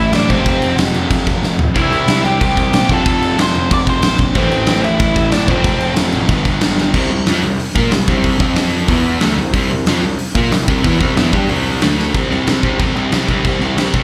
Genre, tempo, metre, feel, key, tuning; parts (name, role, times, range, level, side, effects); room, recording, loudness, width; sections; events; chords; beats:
punk rock; 185 BPM; 4/4; straight; C major from 6.9 s; A4 = 440 Hz
biting lead guitar; melody; 0.0-5.9 s; C4 to D6; -21 LUFS; equal; overdrive, slapback echo, digital delay
overdriven semi-hollow guitar; riff; 0.0-14.0 s; F2 to Bb4; -21 LUFS; equal; slapback echo
sludgy distorted guitar; riff; 0.0-14.0 s; F2 to Bb4; -23 LUFS; equal; overdrive, slapback echo
fuzz picked electric bass; bass; 0.0-14.0 s; F1 to Bb2; -23 LUFS; equal; overdrive
big rock drum kit; drums; 0.1-14.0 s; crash cymbal, hi-hat, kick drum, snare drum, toms; -19 LUFS; equal
small room ambience; live gig heard through the venue's PA, club reverb; -15 LUFS; mono
0.0-6.9 A section; 6.9-12.1 B section; 12.1-14.0 C section
drum fill 1.4-1.8, 6.8, 12.0
0.3 F5; 1.8 C; 2.9 F; 4.4 Am; 5.5 F; 6.3 G5; 6.9 C5; 8.4 F5; 8.9 E5; 9.2 C; 11.8 D5; 12.1 C5
0.14 | 0.46 0.79 1.11 1.44 | 1.76 2.08 2.41 2.73 | 3.06 3.38 3.70 4.03 | 4.35 4.67 5.00 5.32 | 5.65 5.97 6.29 6.62 | 6.94 7.27 7.59 7.92 | 8.24 8.56 8.89 9.21 | 9.54 9.86 10.19 10.51 | 10.84 11.16 11.49 11.81 | 12.14 12.46 12.79 13.12 | 13.44 13.77